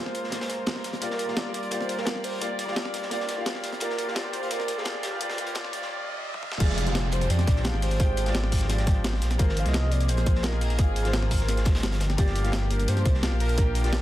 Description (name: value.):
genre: liquid drum and bass.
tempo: 172 BPM.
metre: 4/4.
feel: straight.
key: F dorian.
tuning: A4 = 441 Hz.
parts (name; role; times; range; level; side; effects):
warm velvety synth lead; melody; 0.0-14.0 s; F4 to F5; -34 LUFS; right 1 dB; chorus, dub echo.
clear grand piano; accompaniment; 0.0-14.0 s; Ab3 to G5; -33 LUFS; left 1 dB; digital delay.
warm studio string section; sustained chords; 0.0-14.0 s; F3 to G5; -37 LUFS; left 1 dB; low-pass filter.
breakbeat sampler-style drum kit; drums; 0.1-14.0 s; crash cymbal, hi-hat, snare drum, toms; -32 LUFS; equal; none.
crunchy breakbeat drum kit; drums; 0.2-14.0 s; hi-hat, snare drum; -38 LUFS; equal; high-pass filter on hats, high-pass filter on snare, high-pass filter on room.
riser and downlifter; sound effects; 3.2-9.4 s; none; -38 LUFS; right 1 dB; none.
dark detuned saw bass; bass; 6.6-14.0 s; F1 to G2; -25 LUFS; equal; tube saturation.
electronic kick drum; drums; 6.6-13.7 s; none; -22 LUFS; equal; overdrive.
room: light reverb, small room ambience.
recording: dense, heavily limited modern master, high-pass filter.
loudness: -24 LUFS.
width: side -14 dB against mid.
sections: 0.0-6.6 A section; 6.6-14.0 B section.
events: build-up 0.0-6.6; filter sweep on string section 0.0-6.6; riser 3.2-6.6; break 5.9-6.6; drum fill 6.3; drop 6.6-14.0.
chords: 0.0 Ab69; 0.8 Gm7; 3.6 C9sus4; 6.6 Fm69; 9.4 Ab69; 12.0 Gm7.